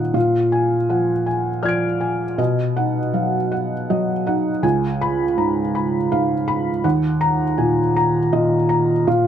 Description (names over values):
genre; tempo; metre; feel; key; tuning
neoclassical minimalist piano; 54 BPM (dotted quarters); 6/8; rubato; Eb minor; A4 = 440 Hz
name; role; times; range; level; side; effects
felt-muted upright piano; solo; 0.0-9.3 s; Db2 to D7; -17 LUFS; equal; none
room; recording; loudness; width
light reverb; none; -17 LUFS; side -9 dB against mid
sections
0.0-9.3 A section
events
none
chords
0.1 Bb7; 2.4 B; 4.6 Db7; 6.8 Ebm